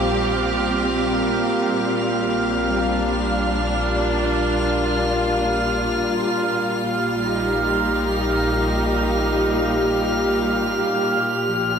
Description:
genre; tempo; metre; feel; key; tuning
ambient; free time; none; none; unclear; A4 = 440 Hz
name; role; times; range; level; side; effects
rich studio string section; sustained chords; 0.0-11.8 s; Bb2 to F5; -21 LUFS; equal; shimmer reverb
deep rumbling drone; bass; 0.0-11.8 s; Bb1; -29 LUFS; left 1 dB; built-in reverb
pedal harmonium; drone; 0.0-11.8 s; Bb3 to F4; -25 LUFS; equal; none
drifting glass-harmonics texture; texture; 0.0-11.8 s; F6; -26 LUFS; right 3 dB; chorus, built-in reverb, shimmer reverb
room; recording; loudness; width
wet lush hall reverb, RT60 3.0 s; none; -18 LUFS; side -7 dB against mid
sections
0.0-11.8 A section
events
none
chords
0.0 Fsus2/Bb; 6.5 Ebadd9/Bb; 11.2 Bb5

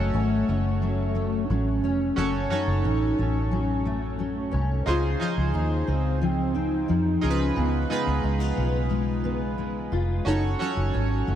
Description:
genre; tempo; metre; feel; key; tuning
indie pop; 89 BPM; 4/4; straight; Db major; A4 = 440 Hz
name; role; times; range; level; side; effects
warbly nostalgic lead; melody; 0.0-11.2 s; A3 to F4; -29 LUFS; equal; lush chorus, analog delay
chorused retro synth keys; accompaniment; 0.0-11.4 s; Db4 to Db5; -31 LUFS; right 3 dB; none
fingerpicked steel-string acoustic guitar; accompaniment; 0.0-11.4 s; Gb2 to F4; -30 LUFS; left 4 dB; ensemble chorus, vibrato effect
vintage muted fingered electric bass; bass; 0.0-11.4 s; F1 to F2; -26 LUFS; equal; none
room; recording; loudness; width
moderate huge ambient reverb, RT60 7.5 s; dreamy mix soaked in reverb; -23 LUFS; side -10 dB against mid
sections
0.0-11.4 A section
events
none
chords
0.0 Gbm; 4.9 Dbmaj9; 7.2 Db7; 10.3 Gbm

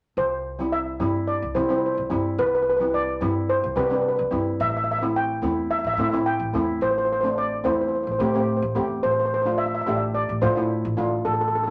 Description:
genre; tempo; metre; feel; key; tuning
calypso; 108 BPM; 4/4; straight; C major; A4 = 441 Hz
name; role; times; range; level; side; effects
steel pan; melody; 0.2-11.7 s; A4 to G5; -26 LUFS; equal; none
upright bass; bass; 0.2-11.7 s; A1 to C3; -32 LUFS; equal; none
steel pan; accompaniment; 0.6-11.7 s; G3 to G4; -28 LUFS; equal; none
room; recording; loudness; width
wet large studio reverb, RT60 0.8 s; none; -23 LUFS; mono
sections
0.2-11.7 A section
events
none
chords
0.2 C; 4.6 Am7; 9.0 Dm7/A

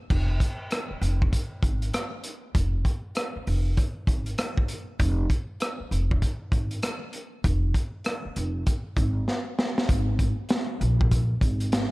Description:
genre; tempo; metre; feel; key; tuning
hip hop, jazz-hop; 98 BPM; 4/4; swing 62% on 16ths; F minor; A4 = 440 Hz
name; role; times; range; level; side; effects
upright bass; bass; 0.1-11.8 s; F1 to Bb1; -25 LUFS; equal; none
crunchy breakbeat drum kit; drums; 0.1-11.9 s; crash cymbal, hi-hat, kick drum, rim click, snare drum; -26 LUFS; equal; none
room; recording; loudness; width
light reverb; none; -24 LUFS; side -21 dB against mid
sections
0.1-9.9 A section; 9.9-11.9 B section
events
drum fill 9.3-9.9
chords
none

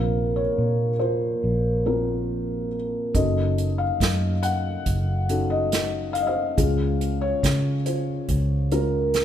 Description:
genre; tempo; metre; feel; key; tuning
acoustic folk-pop ballad; 70 BPM; 4/4; straight; unclear; A4 = 442 Hz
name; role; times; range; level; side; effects
felt-muted upright piano; melody; 0.0-9.2 s; Gb1 to Gb5; -24 LUFS; left 1 dB; none
vintage muted fingered electric bass; bass; 0.0-9.2 s; Gb1 to Db3; -25 LUFS; equal; none
unplugged drum kit; drums; 3.1-9.2 s; hi-hat, kick drum, snare drum; -27 LUFS; right 2 dB; none
room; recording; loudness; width
moderate concert hall reverb, RT60 2.2 s; recorded in a church or concert hall; -21 LUFS; side -10 dB against mid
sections
0.0-9.2 A section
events
none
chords
0.0 Bbsus2; 3.1 Gbm6; 6.6 Dbmaj7

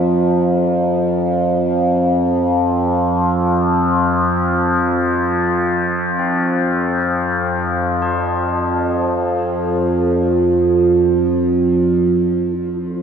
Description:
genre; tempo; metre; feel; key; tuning
dark ambient drone; free time; none; none; unclear; A4 = 444 Hz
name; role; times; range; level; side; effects
tubular bells; arpeggios; 0.0-13.0 s; C4 to D4; -32 LUFS; left 3 dB; tape echo
overtone-sweeping drone; drone; 0.0-13.0 s; F2 to F3; -14 LUFS; equal; chorus, built-in reverb
wind-like tuned noise texture; texture; 12.7-13.0 s; C4 to C5; -38 LUFS; left 2 dB; built-in reverb
room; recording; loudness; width
wet huge ambient reverb, RT60 7.6 s; cassette tape, nothing above 10.8 kHz; -14 LUFS; side -7 dB against mid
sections
0.0-12.6 A section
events
fade-out on tubular bells 0.0-12.6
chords
0.0 Dm

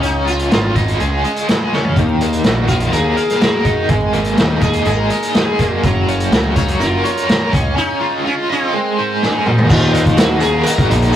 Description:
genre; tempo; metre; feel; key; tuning
psychedelic rock; 124 BPM; 4/4; straight; unclear; A4 = 443 Hz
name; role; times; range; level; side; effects
sitar; melody; 0.0-11.2 s; C4 to Bb4; -21 LUFS; equal; none
bright tonewheel organ; sustained chords; 0.0-11.2 s; Ab4 to Eb6; -28 LUFS; right 3 dB; none
cranked stack guitar; riff; 0.0-11.2 s; Eb3 to F5; -18 LUFS; equal; overdrive, tremolo
fuzz picked electric bass; bass; 0.0-11.1 s; Gb1 to Eb2; -18 LUFS; equal; overdrive
vintage drum kit; drums; 0.0-11.1 s; crash cymbal, hi-hat, kick drum, snare drum, toms; -16 LUFS; equal; none
congas; percussion; 2.1-10.9 s; none; -31 LUFS; left 2 dB; none
room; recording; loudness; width
moderate small room reverb, RT60 0.6 s; rough rehearsal-room recording, warm saturation; -13 LUFS; side -11 dB against mid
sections
0.0-9.7 A section; 9.7-11.2 B section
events
drum fill 1.7, 9.2-9.7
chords
0.0 Dbadd9; 2.0 Ebmadd9; 3.9 Absus2; 5.8 Gb; 7.5 Dbadd9; 8.7 Abadd9; 9.7 Ebmadd9

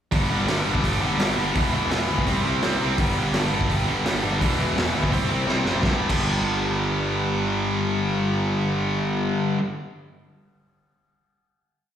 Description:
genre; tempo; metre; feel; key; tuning
punk rock; 169 BPM; 4/4; straight; G major; A4 = 442 Hz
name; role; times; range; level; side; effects
tight distorted guitar; riff; 0.1-9.6 s; E2 to C4; -26 LUFS; left 9 dB; distortion
tight distorted guitar; riff; 0.1-9.6 s; E2 to C4; -25 LUFS; right 8 dB; distortion, slapback echo
fuzz picked electric bass; bass; 0.1-9.3 s; E1 to D2; -28 LUFS; equal; overdrive
raw garage drum kit; drums; 0.1-6.2 s; crash cymbal, hi-hat, kick drum, snare drum; -26 LUFS; equal; none
room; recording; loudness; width
small room ambience; live gig heard through the venue's PA, recital hall reverb; -20 LUFS; side -9 dB against mid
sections
0.1-5.8 verse; 5.8-8.6 final chord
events
drum fill 5.5-5.8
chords
0.1 G5; 1.6 E5; 2.3 C5; 3.0 G5; 4.4 E5; 5.1 C5; 5.8 G5

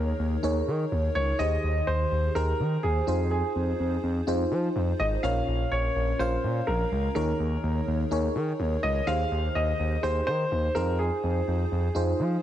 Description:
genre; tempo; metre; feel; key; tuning
1980s-style pop; 125 BPM; 4/4; straight; unclear; A4 = 440 Hz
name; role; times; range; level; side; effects
warm grand piano; melody; 0.0-12.4 s; Ab4 to F5; -30 LUFS; right 1 dB; tape echo
FM electric piano with soft pad layer; accompaniment; 0.0-12.4 s; Bb2 to F5; -30 LUFS; equal; chorus
smooth gliding synth bass; bass; 0.0-12.4 s; Ab1 to F3; -27 LUFS; equal; none
room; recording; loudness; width
light reverb, small room reverb; none; -24 LUFS; side -11 dB against mid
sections
0.0-12.4 A section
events
none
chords
0.0 Eb7sus4; 1.4 Abmaj7/Eb; 3.1 Fm7; 5.2 Bbm; 7.2 Eb7sus4; 9.1 Abmaj7/Eb; 10.8 Fm7

